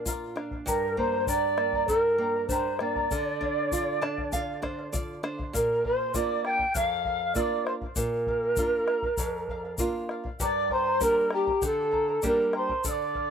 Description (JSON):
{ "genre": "andean folk, Andean ensemble", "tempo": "99 BPM", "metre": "4/4", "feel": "straight", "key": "unclear", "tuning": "A4 = 439 Hz", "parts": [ { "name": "polished pan flute", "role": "melody", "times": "0.0-13.3 s", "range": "G4 to G5", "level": "-26 LUFS", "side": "right 1 dB", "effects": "slapback echo" }, { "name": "mellow quena", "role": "second line", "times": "0.0-13.3 s", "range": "Bb4 to A6", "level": "-34 LUFS", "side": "right 2 dB", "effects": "slapback echo" }, { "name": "charango", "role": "accompaniment", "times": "0.0-13.3 s", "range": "G4 to Bb5", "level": "-35 LUFS", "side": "left 4 dB", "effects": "slapback echo" }, { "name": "nylon-string guitar", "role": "accompaniment", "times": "0.0-13.3 s", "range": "F2 to A5", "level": "-34 LUFS", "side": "right 2 dB", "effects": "slapback echo" }, { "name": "bombo", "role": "percussion", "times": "0.1-13.3 s", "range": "none", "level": "-35 LUFS", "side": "left 2 dB", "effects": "none" }, { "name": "egg shaker", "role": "percussion", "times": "0.1-13.0 s", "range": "none", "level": "-35 LUFS", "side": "left 7 dB", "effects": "none" } ], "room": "little or no reverb", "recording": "recorded outdoors, with no room sound", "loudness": "-25 LUFS", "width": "side -7 dB against mid", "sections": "0.0-5.5 A section; 5.5-13.3 A section", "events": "nylon-string guitar fill 3.7-5.5", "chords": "0.0 Bb; 0.7 Gm; 3.1 Dm; 5.5 Bb; 10.4 Gm", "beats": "0.07 | 0.68 1.28 1.89 2.50 | 3.11 3.71 4.32 4.93 | 5.54 6.15 6.75 7.36 | 7.97 8.58 9.19 9.79 | 10.40 11.01 11.62 12.23 | 12.84" }